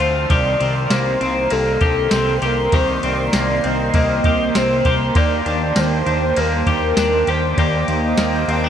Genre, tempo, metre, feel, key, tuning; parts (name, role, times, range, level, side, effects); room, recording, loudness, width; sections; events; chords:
dream pop; 99 BPM; 4/4; straight; A4 = 441 Hz
warm velvety synth lead; melody; 0.0-8.7 s; A4 to G5; -21 LUFS; equal; chorus, digital delay
raw garage guitar; accompaniment; 0.0-8.7 s; C3 to Bb4; -27 LUFS; right 2 dB; overdrive, tremolo, wide subtle chorus
shimmering ambient pad; sustained chords; 0.0-8.7 s; Bb3 to D6; -24 LUFS; right 2 dB; chorus, built-in reverb
clean electric guitar; arpeggios; 0.0-8.7 s; Eb3 to G4; -22 LUFS; left 5 dB; lush chorus, digital delay
fat analog bass; bass; 0.0-8.7 s; C2 to Eb2; -22 LUFS; equal
soft vintage rhythm box; drums; 0.0-8.6 s; kick drum, ride cymbal, snare drum, tambourine; -21 LUFS; equal; gated reverb
moderate lush hall reverb, RT60 2.1 s; bright 1980s-style digital production; -15 LUFS; side -9 dB against mid
0.0-8.7 A section
0.3 Cm7; 5.2 Ebmaj7